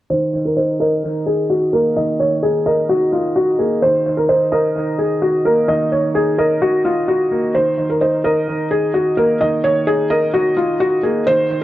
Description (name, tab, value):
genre	hip hop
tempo	129 BPM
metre	4/4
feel	half-time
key	Eb dorian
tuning	A4 = 441 Hz
part	felt-muted upright piano	melody	0.1-11.6 s	F4 to Eb5	-15 LUFS	equal	low-pass filter, dub echo
part	dark grand piano	accompaniment	0.1-11.6 s	Eb3 to Eb5	-21 LUFS	right 1 dB	low-pass filter, dub echo
room	light reverb, studio reverb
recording	echo-heavy mix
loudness	-14 LUFS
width	side -14 dB against mid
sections	0.1-11.6 A section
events	filter sweep 0.1-11.6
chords	0.1 Eb5